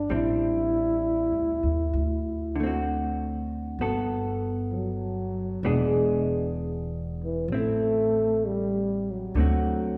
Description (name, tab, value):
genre	jazz ballad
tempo	65 BPM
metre	4/4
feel	swing 69% on 8ths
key	unclear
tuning	A4 = 442 Hz
part	dark trombone	melody	0.0-10.0 s	E3 to E4	-29 LUFS	equal	none
part	vintage hollow-body jazz guitar	accompaniment	0.0-10.0 s	D3 to A4	-33 LUFS	equal	none
part	upright bass	bass	0.0-10.0 s	E1 to Eb2	-32 LUFS	equal	none
room	wet concert hall reverb, RT60 1.7 s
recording	recorded in a church or concert hall, small room ambience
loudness	-27 LUFS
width	mono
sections	0.0-10.0 A section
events	none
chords	0.1 Am7; 1.9 D7; 3.8 Gmaj9; 5.6 E7; 7.5 Am; 9.3 D7